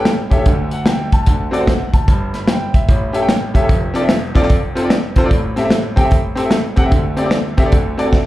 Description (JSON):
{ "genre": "uptempo gospel", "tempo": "149 BPM", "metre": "4/4", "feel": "swing 65% on 8ths", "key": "unclear", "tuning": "A4 = 441 Hz", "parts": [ { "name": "bright concert grand piano", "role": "accompaniment", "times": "0.0-8.3 s", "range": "F1 to B5", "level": "-17 LUFS", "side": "equal", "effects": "slapback echo" }, { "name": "modern studio drum kit", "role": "drums", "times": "0.1-8.2 s", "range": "hi-hat, kick drum, snare drum", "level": "-14 LUFS", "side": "equal", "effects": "none" } ], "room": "light reverb", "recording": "live gig heard through the venue's PA, club reverb", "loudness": "-13 LUFS", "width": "side -16 dB against mid", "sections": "0.0-8.3 A section", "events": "none", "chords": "0.5 N.C.; 1.3 D7; 2.1 N.C.; 2.9 A7; 3.7 Dm7/F; 5.3 Am7; 6.9 D7sus4; 7.7 D7", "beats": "0.05 | 0.46 0.86 1.27 1.67 | 2.08 2.48 2.89 3.29 | 3.69 4.10 4.50 4.91 | 5.31 5.71 6.11 6.52 | 6.92 7.32 7.72 8.13" }